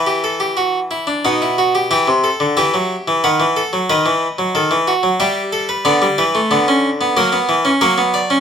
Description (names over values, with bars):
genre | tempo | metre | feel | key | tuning
classical, baroque-style 3-part fugue for harpsichord | 91 BPM | 3/4 | straight | E minor | A4 = 440 Hz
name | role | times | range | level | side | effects
harpsichord | solo | 0.0-8.4 s | B2 to G5 | -13 LUFS | equal | none
room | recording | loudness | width
wet studio reverb, RT60 0.5 s | none | -13 LUFS | side -7 dB against mid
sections
0.0-1.9 A section; 1.9-8.4 B section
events
none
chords
0.0 Bsus4/E (rootless); 1.2 B; 1.9 Em; 3.2 B7/D#; 5.2 Em/G; 5.9 Bm/D; 7.2 F#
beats
0.57 1.24 | 1.91 2.57 3.23 | 3.89 4.55 5.20 | 5.85 6.51 7.16 | 7.82